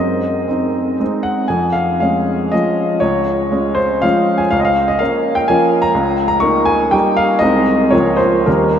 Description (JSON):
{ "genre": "classical, romantic triple-time dance for piano with dotted rhythms", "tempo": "122 BPM", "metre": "3/4", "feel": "uneven beats, rubato", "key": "Ab major", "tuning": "A4 = 441 Hz", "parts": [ { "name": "clear baby grand piano", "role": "solo", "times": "0.0-8.8 s", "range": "C2 to Db6", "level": "-13 LUFS", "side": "equal", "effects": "none" } ], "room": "wet huge ambient reverb, RT60 8.2 s", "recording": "in a vast, echoing space", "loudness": "-13 LUFS", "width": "side -8 dB against mid", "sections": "0.0-8.8 A section", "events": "none", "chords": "0.0 Ab7/Gb; 1.5 Db/F; 3.0 Db; 4.5 Bbm/Db; 7.4 Ab/C; 7.9 Bbm/Db" }